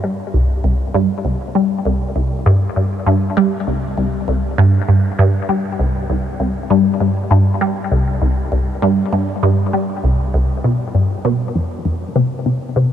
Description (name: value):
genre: ambient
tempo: 99 BPM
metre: 4/4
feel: straight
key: unclear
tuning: A4 = 440 Hz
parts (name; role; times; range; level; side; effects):
- resonant blip pluck; solo; 0.0-12.9 s; C2 to G3; -14 LUFS; equal; phaser, wide subtle chorus, ping-pong delay
room: moderate huge ambient reverb, RT60 8.4 s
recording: none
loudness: -14 LUFS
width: side -10 dB against mid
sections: 0.0-11.6 A section; 11.6-12.9 B section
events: none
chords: none